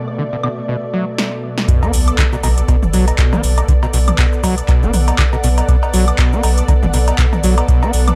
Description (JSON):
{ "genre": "acid house", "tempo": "120 BPM", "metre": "4/4", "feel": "swing 57% on 16ths", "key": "B minor", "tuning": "A4 = 439 Hz", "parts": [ { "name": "lush unison pad", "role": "sustained chords", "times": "0.0-8.2 s", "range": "B2 to D5", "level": "-26 LUFS", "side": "equal", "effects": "chorus, sidechain pumping" }, { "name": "granular cloud pad", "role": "texture", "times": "0.0-8.2 s", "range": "B3 to F#5", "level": "-34 LUFS", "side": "equal", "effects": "none" }, { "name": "overdriven acid bass", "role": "riff", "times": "0.2-7.9 s", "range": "B2 to B3", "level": "-24 LUFS", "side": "equal", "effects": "tube saturation, analog chorus, vintage 12-bit sampler grit, sidechain pumping, tape echo" }, { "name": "electro analog drum machine", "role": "drums", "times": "0.4-8.2 s", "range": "cowbell, handclaps, hi-hat, shaker, snare drum, toms, woodblock", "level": "-23 LUFS", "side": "equal", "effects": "overdrive, analog delay" }, { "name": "electronic kick drum", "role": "drums", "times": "1.7-7.8 s", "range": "none", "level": "-17 LUFS", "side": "equal", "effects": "none" }, { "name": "sub drop", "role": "sound effects", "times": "1.7-3.7 s", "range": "none", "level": "-26 LUFS", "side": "equal", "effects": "none" }, { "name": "warm sub bass", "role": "bass", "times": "1.9-8.1 s", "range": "F#1 to B1", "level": "-17 LUFS", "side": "equal", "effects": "tube saturation, sidechain pumping" } ], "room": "little or no reverb", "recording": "echo-heavy mix", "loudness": "-15 LUFS", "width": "mono", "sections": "0.0-1.7 A section; 1.7-8.2 B section", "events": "drum fill 1.2-1.7; drop 1.7-8.2; impact 1.7-3.7", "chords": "0.0 Bm7" }